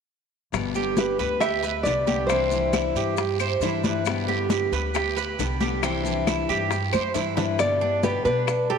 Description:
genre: latin, Cuban son and guajira.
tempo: 136 BPM.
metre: 4/4.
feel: straight.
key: G major.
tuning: A4 = 440 Hz.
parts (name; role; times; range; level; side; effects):
fingerpicked steel-string acoustic guitar; accompaniment; 0.5-8.5 s; B2 to G4; -29 LUFS; left 10 dB; none.
upright bass; bass; 0.5-8.8 s; G1 to B2; -30 LUFS; right 1 dB; none.
bongos; percussion; 0.5-8.8 s; none; -33 LUFS; left 10 dB; none.
claves; percussion; 0.5-8.7 s; none; -37 LUFS; left 11 dB; none.
congas; percussion; 0.5-8.8 s; none; -31 LUFS; equal; none.
guiro; percussion; 0.5-7.6 s; none; -37 LUFS; right 13 dB; none.
maracas; percussion; 0.5-8.7 s; none; -42 LUFS; left 13 dB; none.
Cuban tres; arpeggios; 0.8-8.8 s; C4 to C5; -27 LUFS; right 8 dB; tape echo.
nylon-string guitar; melody; 1.0-3.1, 7.6-8.8 s; A4 to E5; -24 LUFS; left 1 dB; none.
room: wet plate reverb, RT60 3.6 s.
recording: 1960s-style stereo with parts hard left and right.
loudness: -22 LUFS.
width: side -6 dB against mid.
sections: 0.5-7.6 A section; 7.6-8.8 B section.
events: drum fill 6.9-7.6.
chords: 0.5 G; 2.3 Cadd9; 4.1 G; 5.8 Cadd9; 7.6 G.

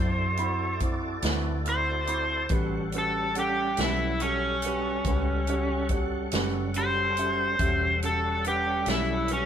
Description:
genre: slow blues.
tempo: 47 BPM (dotted quarters).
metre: 12/8.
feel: straight.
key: A mixolydian.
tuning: A4 = 440 Hz.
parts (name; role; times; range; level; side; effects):
overdriven slide guitar; melody; 0.0-9.5 s; C#4 to C5; -27 LUFS; equal; none.
warm concert grand piano; accompaniment; 0.0-9.5 s; C4 to B5; -33 LUFS; right 5 dB; none.
tonewheel organ; sustained chords; 0.0-9.5 s; G3 to F#5; -35 LUFS; left 2 dB; slow rotary speaker, overdrive, chorus vibrato.
vintage muted fingered electric bass; bass; 0.0-9.5 s; E1 to F#2; -31 LUFS; left 1 dB; none.
swinging big-band drum kit; drums; 0.4-9.5 s; hi-hat, kick drum, snare drum; -30 LUFS; equal; none.
room: light reverb.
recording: band playing live in one room.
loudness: -24 LUFS.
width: side -9 dB against mid.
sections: 0.0-9.5 A section.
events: none.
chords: 0.0 D13; 2.5 A13.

